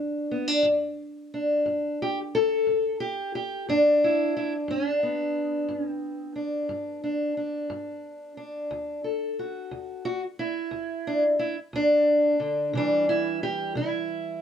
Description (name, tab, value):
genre	acoustic country blues, solo or duo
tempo	60 BPM (dotted quarters)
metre	12/8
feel	straight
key	G major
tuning	A4 = 441 Hz
part	fingerpicked steel-string acoustic guitar	solo	0.0-14.4 s	D2 to A4	-24 LUFS	equal	none
room	moderate studio reverb, RT60 0.7 s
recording	close, detailed microphones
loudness	-24 LUFS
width	side -8 dB against mid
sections	0.0-14.4 A section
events	none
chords	0.0 G; 8.7 D; 12.7 C